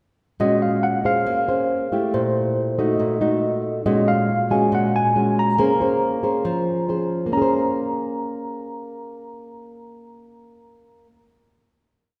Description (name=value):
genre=bossa nova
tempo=139 BPM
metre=4/4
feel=straight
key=Bb minor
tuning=A4 = 441 Hz
part: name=bright tine electric piano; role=melody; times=0.4-11.1 s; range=C5 to Bb5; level=-26 LUFS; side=equal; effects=none
part: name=nylon-string guitar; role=accompaniment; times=0.4-11.2 s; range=Bb2 to C5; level=-23 LUFS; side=equal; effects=none
room=wet scoring stage reverb, RT60 1.7 s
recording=recorded in a church or concert hall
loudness=-21 LUFS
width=mono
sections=0.4-7.3 A section; 7.3-10.8 final chord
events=none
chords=0.4 Gbmaj9#11/Bb; 1.3 Bbm9; 2.1 C6/Bb; 3.0 Ebm/Bb; 3.9 Gbmaj9/Bb; 5.6 Bbm9